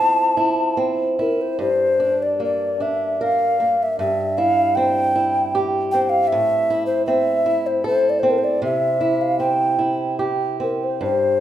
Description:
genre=celtic folk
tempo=76 BPM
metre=3/4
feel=rubato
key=unclear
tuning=A4 = 438 Hz
part: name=mellow alto ocarina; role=melody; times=0.0-11.4 s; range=Bb4 to A5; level=-18 LUFS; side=left 1 dB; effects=none
part: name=fingerpicked swing-style acoustic guitar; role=accompaniment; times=0.0-11.4 s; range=G2 to Bb4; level=-22 LUFS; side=right 2 dB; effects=none
room=moderate recital hall reverb, RT60 1.4 s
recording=minimal, uncompressed stereo recording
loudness=-17 LUFS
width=side -11 dB against mid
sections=0.0-1.6 A section; 1.6-11.4 B section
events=none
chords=0.0 Fmaj7; 1.6 Gm; 4.0 C/G; 6.3 Am; 8.6 C

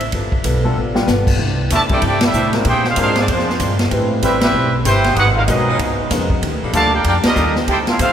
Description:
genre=jazz, big band swing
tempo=191 BPM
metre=4/4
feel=swing 61% on 8ths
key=C major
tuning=A4 = 440 Hz
part: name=fingerpicked acoustic archtop guitar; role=accompaniment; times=0.0-8.1 s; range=Ab2 to B4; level=-24 LUFS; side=left 2 dB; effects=none
part: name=upright bass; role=bass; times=0.0-8.1 s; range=G1 to Bb2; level=-19 LUFS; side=equal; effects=none
part: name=swinging big-band drum kit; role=drums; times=0.0-8.1 s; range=crash cymbal, hi-hat, kick drum, ride cymbal, snare drum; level=-20 LUFS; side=equal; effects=none
part: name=clear concert grand piano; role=accompaniment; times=0.6-7.5 s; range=G3 to B4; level=-25 LUFS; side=left 3 dB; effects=none
part: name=clear trumpet section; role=melody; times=1.7-8.1 s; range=Ab3 to A5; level=-18 LUFS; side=right 1 dB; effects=none
part: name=muted trombone section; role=second line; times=1.7-8.1 s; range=A2 to G4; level=-22 LUFS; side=right 3 dB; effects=none
part: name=warm saxophone section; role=sustained chords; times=1.9-8.1 s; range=F3 to C5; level=-29 LUFS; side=equal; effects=none
room=wet cathedral reverb, RT60 4.5 s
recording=recorded in a church or concert hall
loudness=-13 LUFS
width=side -9 dB against mid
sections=0.0-1.4 A section; 1.4-8.1 B section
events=drum fill 0.8-1.1; band accent 2.2, 4.4, 7.2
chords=0.1 G9; 1.4 C69; 2.7 Bb9; 3.9 Am9; 5.2 Abm7; 5.8 Db9; 6.4 Ebmaj9#11

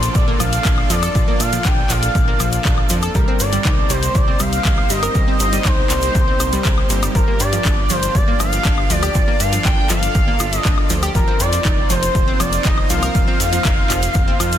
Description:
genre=progressive house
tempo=120 BPM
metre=4/4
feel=straight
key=G minor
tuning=A4 = 440 Hz
part: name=expressive synth lead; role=melody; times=0.0-14.6 s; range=Bb4 to G5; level=-22 LUFS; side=equal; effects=wide subtle chorus, dub echo
part: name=supersaw pad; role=sustained chords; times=0.0-14.6 s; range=Bb3 to D5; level=-26 LUFS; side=right 1 dB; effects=sidechain pumping
part: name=plucky analog bass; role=bass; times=0.0-14.6 s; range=F1 to Bb2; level=-22 LUFS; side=equal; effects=sidechain pumping
part: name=house drum kit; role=drums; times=0.0-14.6 s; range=handclaps, hi-hat, woodblock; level=-24 LUFS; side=left 3 dB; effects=overdrive
part: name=tube shaker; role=percussion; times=0.0-14.6 s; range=none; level=-28 LUFS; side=right 5 dB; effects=none
part: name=downlifter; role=sound effects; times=0.0-3.1 s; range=none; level=-33 LUFS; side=right 1 dB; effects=none
part: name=electronic kick drum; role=drums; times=0.1-14.3 s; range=none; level=-18 LUFS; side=equal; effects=overdrive
part: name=analog pluck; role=arpeggios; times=0.3-14.4 s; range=F3 to C6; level=-25 LUFS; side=equal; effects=chorus, sidechain pumping, dub echo
room=light reverb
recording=dense, heavily limited modern master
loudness=-14 LUFS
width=side -10 dB against mid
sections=0.0-14.6 A section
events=none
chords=0.0 Bbmaj7; 3.1 Cm7; 7.2 Gm7; 11.2 F7sus4

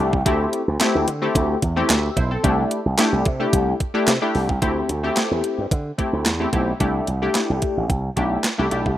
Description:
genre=early-eighties boogie funk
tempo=110 BPM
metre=4/4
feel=straight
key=unclear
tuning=A4 = 440 Hz
part: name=funky polysynth comp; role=accompaniment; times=0.0-8.9 s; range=A3 to E5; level=-22 LUFS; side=left 2 dB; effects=chorus
part: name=slap bass with an envelope filter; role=bass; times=0.0-8.9 s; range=A1 to D3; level=-22 LUFS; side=right 1 dB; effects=none
part: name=clean 12-bit digital drum machine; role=drums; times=0.1-9.0 s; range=handclaps, hi-hat, kick drum, snare drum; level=-22 LUFS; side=right 1 dB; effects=overdrive
room=light reverb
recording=rough home demo mix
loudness=-18 LUFS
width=side -12 dB against mid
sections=0.0-4.6 A section; 4.6-9.0 B section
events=none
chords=0.3 D9sus4; 2.4 C69; 4.6 D9sus4; 6.8 C69

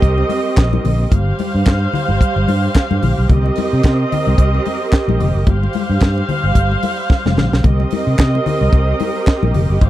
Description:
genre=disco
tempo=110 BPM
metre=4/4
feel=swing 56% on 16ths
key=C minor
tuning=A4 = 441 Hz
part: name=rich studio string section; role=sustained chords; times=0.0-9.9 s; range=G3 to F5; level=-19 LUFS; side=right 2 dB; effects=none
part: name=fingered electric bass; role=bass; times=0.0-9.9 s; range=F1 to C3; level=-15 LUFS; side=equal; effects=none
part: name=tight funk drum kit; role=drums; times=0.0-9.9 s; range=handclaps, hi-hat, kick drum, snare drum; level=-13 LUFS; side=equal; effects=none
part: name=congas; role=percussion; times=0.0-9.9 s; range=none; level=-23 LUFS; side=left 7 dB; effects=none
room=little or no reverb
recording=dry, close 1970s-style studio recording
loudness=-13 LUFS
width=side -14 dB against mid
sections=0.0-9.9 A section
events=drum fill 7.1-7.6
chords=0.0 Cm7; 1.1 G7sus4; 3.3 Cm7; 5.5 G7sus4; 7.6 Cm7

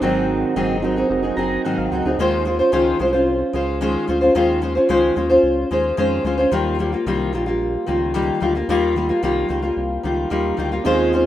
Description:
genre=indie pop, bedroom pop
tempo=111 BPM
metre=4/4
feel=straight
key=Eb mixolydian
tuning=A4 = 440 Hz
part: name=fingerpicked steel-string acoustic guitar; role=accompaniment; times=0.0-11.3 s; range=Ab2 to C5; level=-18 LUFS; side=left 1 dB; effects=lush chorus, warbly pitch drift
part: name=mellow tonewheel organ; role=accompaniment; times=0.0-2.2, 10.8-11.3 s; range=C4 to Bb5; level=-22 LUFS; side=right 4 dB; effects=slow rotary speaker, cassette tape
part: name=round analog bass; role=bass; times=0.0-11.3 s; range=F1 to F2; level=-26 LUFS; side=equal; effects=none
room=moderate plate reverb, RT60 2.9 s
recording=rough home demo mix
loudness=-17 LUFS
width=side -12 dB against mid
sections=0.0-2.2 A section; 2.2-11.3 B section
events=tonewheel organ fill 1.1-2.2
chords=0.0 Ab7; 2.2 Dbmaj7; 6.5 Ebadd9

